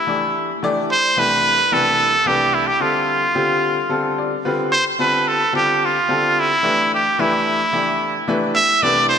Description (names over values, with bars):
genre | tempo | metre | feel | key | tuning
jazz | 219 BPM (eighths) | 7/8 | straight | D dorian | A4 = 440 Hz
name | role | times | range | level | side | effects
trumpet with straight mute | melody | 0.0-9.2 s | E4 to E5 | -16 LUFS | right 1 dB | none
bright baby grand piano | accompaniment | 0.1-9.2 s | C2 to D5 | -22 LUFS | left 2 dB | none
room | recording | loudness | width
wet lush hall reverb, RT60 2.9 s | bright 1980s-style digital production | -15 LUFS | side -7 dB against mid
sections
0.0-4.7 A section; 4.7-9.2 A section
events
grand piano fill 3.9-4.7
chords
0.0 Gsus2; 0.9 Cmaj7; 2.8 Dm7; 6.6 G69; 8.6 Cmaj7